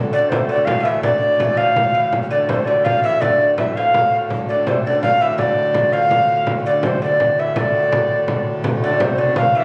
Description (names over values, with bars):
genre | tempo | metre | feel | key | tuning
medieval dance | 110 BPM (dotted quarters) | 6/8 | straight | D minor | A4 = 440 Hz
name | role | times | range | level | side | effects
hand-pumped harmonium | drone | 0.0-9.6 s | D2 to A2 | -26 LUFS | equal | none
tenor recorder | melody | 0.1-9.6 s | C5 to F5 | -19 LUFS | equal | none
lute | second line | 0.1-9.6 s | C3 to F3 | -29 LUFS | equal | none
frame drum | percussion | 0.3-9.5 s | none | -26 LUFS | equal | none
warm viola da gamba | second line | 8.8-9.6 s | C3 to E3 | -30 LUFS | equal | none
room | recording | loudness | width
wet recital hall reverb, RT60 1.3 s | recorded on a phone in the room, club reverb, compression | -17 LUFS | mono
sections
0.0-8.6 A section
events
none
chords
none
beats
0.50 | 1.04 1.59 | 2.13 2.67 | 3.22 3.76 | 4.30 4.85 | 5.39 5.93 | 6.48 7.02 | 7.56 8.10 | 8.65 9.19